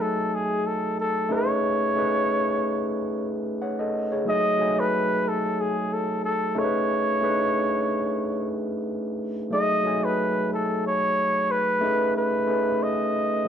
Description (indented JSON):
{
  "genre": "soul",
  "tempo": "91 BPM",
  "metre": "4/4",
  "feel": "swing 54% on 16ths",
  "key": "unclear",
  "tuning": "A4 = 440 Hz",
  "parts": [
    { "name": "warm flugelhorn", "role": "melody", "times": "0.0-13.5 s", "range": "G#4 to D#5", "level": "-24 LUFS", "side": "equal", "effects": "none" },
    { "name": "overdriven tine electric piano", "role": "accompaniment", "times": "0.0-13.5 s", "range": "F#3 to G#5", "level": "-26 LUFS", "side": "equal", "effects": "none" }
  ],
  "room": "moderate stone room reverb, RT60 1.0 s",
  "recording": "band playing live in one room",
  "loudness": "-22 LUFS",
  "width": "side -8 dB against mid",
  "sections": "0.0-13.5 A section",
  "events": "none",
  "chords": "0.0 F#m69; 1.3 B13; 4.3 F#m69; 6.6 B13; 9.5 F#m69; 11.8 B13"
}